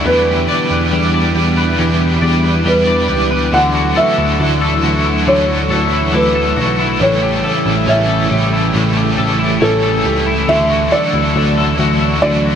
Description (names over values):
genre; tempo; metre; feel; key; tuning
dream pop; 69 BPM; 4/4; straight; D major; A4 = 440 Hz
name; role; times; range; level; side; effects
felt-muted upright piano; melody; 0.0-12.6 s; A4 to F#5; -18 LUFS; right 1 dB; digital delay
overdriven electric guitar; accompaniment; 0.0-12.6 s; A2 to D5; -20 LUFS; right 1 dB; tremolo, wide subtle chorus
string machine, cellos; sustained chords; 0.0-12.6 s; C#3 to E4; -19 LUFS; equal; ensemble chorus
twangy electric guitar; arpeggios; 0.0-12.6 s; A2 to D5; -18 LUFS; left 2 dB; analog chorus, digital delay
tine electric piano; bass; 0.1-12.6 s; A1 to E2; -18 LUFS; equal; overdrive, fast stereo tremolo
room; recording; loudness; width
moderate huge ambient reverb, RT60 6.6 s; none; -12 LUFS; side -8 dB against mid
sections
0.0-12.6 A section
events
none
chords
0.0 Em7; 3.5 Dadd9; 7.0 A7; 10.5 Dadd9